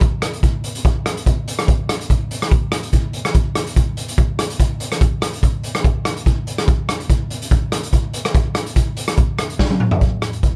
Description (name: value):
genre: calypso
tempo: 144 BPM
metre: 4/4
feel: swing 54% on 16ths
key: none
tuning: none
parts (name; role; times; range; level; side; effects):
- raw garage drum kit; drums; 0.0-10.5 s; hi-hat, kick drum, rim click, snare drum, toms; -18 LUFS; equal; none
room: little or no reverb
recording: dark, warm production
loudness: -19 LUFS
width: mono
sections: 0.0-10.0 A section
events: drum fill 9.6-10.0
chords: none